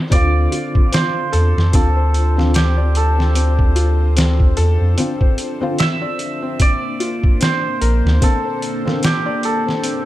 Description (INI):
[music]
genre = trip hop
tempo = 74 BPM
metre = 4/4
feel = swing 57% on 16ths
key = D minor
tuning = A4 = 440 Hz
[part]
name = hammered dulcimer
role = melody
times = 0.0-10.1 s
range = G4 to E5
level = -23 LUFS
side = right 3 dB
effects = vintage 12-bit sampler grit, tape echo
[part]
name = felt-muted upright piano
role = arpeggios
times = 0.0-10.1 s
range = C4 to D5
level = -25 LUFS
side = left 4 dB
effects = tape echo
[part]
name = felt-muted upright piano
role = accompaniment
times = 0.1-9.0 s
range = D3 to F4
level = -24 LUFS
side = left 1 dB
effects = harmonic tremolo, tape echo
[part]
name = string machine, cellos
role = sustained chords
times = 0.1-10.1 s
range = Bb3 to D5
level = -28 LUFS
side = equal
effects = ensemble chorus
[part]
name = soft dub sub bass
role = bass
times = 0.1-8.2 s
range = Bb1 to F2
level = -14 LUFS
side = equal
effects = none
[part]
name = trip hop sampler-style drum kit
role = drums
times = 0.1-10.1 s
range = hi-hat, kick drum, snare drum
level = -17 LUFS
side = equal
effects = low-pass filter on hats, low-pass filter on snare, low-pass filter on kick
[sound]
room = studio ambience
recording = none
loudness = -14 LUFS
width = side -15 dB against mid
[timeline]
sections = 0.1-10.1 A section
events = none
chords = 0.1 Dm7; 6.6 Bbadd9